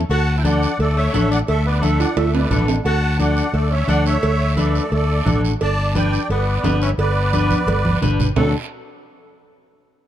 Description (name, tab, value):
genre	latin, cumbia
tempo	174 BPM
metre	4/4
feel	straight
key	D major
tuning	A4 = 440 Hz
part	fingered electric bass	bass	0.0-8.5 s	G1 to D2	-19 LUFS	equal	none
part	musette accordion	melody	0.1-8.5 s	A4 to A5	-24 LUFS	right 2 dB	none
part	clear tenor saxophone	second line	0.1-8.5 s	F#3 to F#4	-28 LUFS	left 4 dB	none
part	congas	percussion	0.1-8.4 s	none	-24 LUFS	right 2 dB	none
part	cowbell and timbales	percussion	0.1-8.4 s	none	-26 LUFS	right 6 dB	none
part	guiro	percussion	0.1-8.4 s	none	-34 LUFS	right 7 dB	none
part	electric guitar at the edge of break-up	accompaniment	0.4-8.5 s	D4 to B4	-24 LUFS	left 3 dB	none
room	light reverb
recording	dark, warm production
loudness	-16 LUFS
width	side -11 dB against mid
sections	0.0-2.9 A section; 2.9-8.4 B section; 8.4-9.7 C section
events	drum fill 2.0-2.9, 7.5-8.4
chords	0.1 D; 5.6 G; 8.4 D